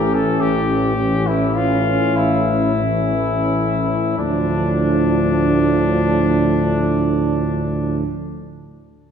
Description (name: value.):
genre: classical, hymn-like piece for brass band.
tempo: 28-37 BPM (dotted quarters).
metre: 12/8.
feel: rubato.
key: D minor.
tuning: A4 = 439 Hz.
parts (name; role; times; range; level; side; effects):
warm cornet; melody; 0.0-8.0 s; D4 to A4; -21 LUFS; left 4 dB; none.
clear French horn section; second line; 0.0-8.0 s; C#4 to D4; -23 LUFS; right 4 dB; none.
clear trombone; accompaniment; 0.0-8.0 s; A2; -24 LUFS; right 1 dB; none.
warm euphonium; accompaniment; 0.0-8.0 s; E3 to F3; -23 LUFS; left 1 dB; none.
mellow tuba; bass; 0.0-8.0 s; A1 to D2; -21 LUFS; right 1 dB; none.
room: wet concert hall reverb, RT60 2.1 s.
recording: heard from further back in the room.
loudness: -15 LUFS.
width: side -7 dB against mid.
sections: 0.0-4.2 A section; 4.2-9.1 B section.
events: slowing down 0.0-4.2.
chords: 0.0 A; 4.2 Dm.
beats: 0.40 2.15 | 4.18 6.19.